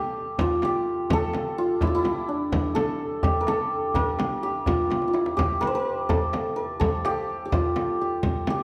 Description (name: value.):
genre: Persian modal ensemble.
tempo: 84 BPM (dotted quarters).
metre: 6/8.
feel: straight.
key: A dastgah shur.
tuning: A4 = 441 Hz.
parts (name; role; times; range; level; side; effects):
santur; melody; 0.0-8.6 s; D4 to D5; -27 LUFS; equal; tape echo.
frame drum; percussion; 0.4-8.6 s; none; -32 LUFS; equal; none.
tombak; percussion; 0.4-8.6 s; none; -31 LUFS; equal; none.
room: wet recital hall reverb, RT60 1.7 s.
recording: none.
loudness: -25 LUFS.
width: mono.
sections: 0.0-8.6 A section.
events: drum fill 4.9-5.4.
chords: none.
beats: 0.38 | 1.10 1.81 | 2.52 3.24 | 3.95 4.67 | 5.38 6.10 | 6.81 7.52 | 8.24.